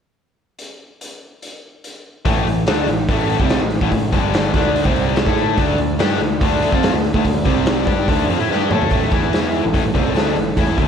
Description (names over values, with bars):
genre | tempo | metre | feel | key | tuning
classic rock | 144 BPM | 4/4 | straight | unclear | A4 = 440 Hz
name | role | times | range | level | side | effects
raw garage drum kit | drums | 0.6-10.9 s | hi-hat, kick drum, snare drum, toms | -19 LUFS | equal | none
overdriven electric guitar | riff | 2.3-10.9 s | G2 to A4 | -20 LUFS | left 9 dB | slapback echo
overdriven semi-hollow guitar | riff | 2.3-10.9 s | G2 to A4 | -22 LUFS | right 9 dB | slapback echo
growling picked electric bass | bass | 2.3-10.9 s | G1 to A2 | -24 LUFS | equal | overdrive
picked steel-string acoustic guitar | accompaniment | 8.9-10.9 s | A2 to B4 | -26 LUFS | right 5 dB | slapback echo
room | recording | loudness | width
moderate lush hall reverb, RT60 1.8 s | big arena sound | -15 LUFS | side -7 dB against mid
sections
0.6-2.3 A section; 2.3-8.9 B section; 8.9-10.9 C section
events
drum fill 8.5-8.9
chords
0.6 N.C.; 2.3 A5; 4.1 G5; 4.5 D5; 4.8 C5; 5.3 A5; 5.6 D5; 7.4 C5; 7.9 D5; 8.9 A; 9.1 E5; 9.6 A